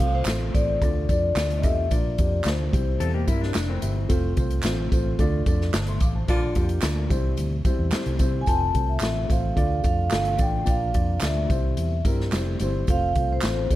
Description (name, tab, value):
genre	uptempo 1960s-style soul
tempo	110 BPM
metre	4/4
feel	straight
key	F major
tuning	A4 = 440 Hz
part	vibraphone with soft mallets	melody	0.0-3.2, 8.4-13.8 s	C5 to A5	-27 LUFS	left 1 dB	none
part	dark upright piano	accompaniment	0.0-13.8 s	G3 to D6	-30 LUFS	equal	none
part	vintage muted fingered electric bass	bass	0.0-13.8 s	F1 to C3	-26 LUFS	equal	none
part	swinging big-band drum kit	drums	0.0-13.8 s	hi-hat, kick drum, snare drum	-25 LUFS	equal	none
part	handclaps and tambourine	percussion	0.3-13.8 s	none	-36 LUFS	right 4 dB	none
part	electric guitar through a small old amp	riff	3.0-4.1 s	E3 to A4	-31 LUFS	left 5 dB	none
part	bright saxophone section	second line	6.3-6.7 s	D3 to F4	-29 LUFS	left 1 dB	none
room	little or no reverb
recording	dark, warm production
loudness	-21 LUFS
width	side -15 dB against mid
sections	0.0-13.8 A section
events	band accent 6.3-8.5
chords	0.0 F; 0.8 Dm; 1.9 Bb; 2.7 C; 4.1 F; 5.2 Dm; 6.3 Bb; 7.1 C; 8.5 F; 9.6 Dm; 10.7 Bb; 11.5 C; 12.9 F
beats	0.27 0.82 1.37 | 1.92 2.46 3.01 3.56 | 4.10 4.65 5.20 5.74 | 6.29 6.83 7.38 7.93 | 8.48 9.03 9.57 10.12 | 10.67 11.22 11.77 12.32 | 12.88 13.43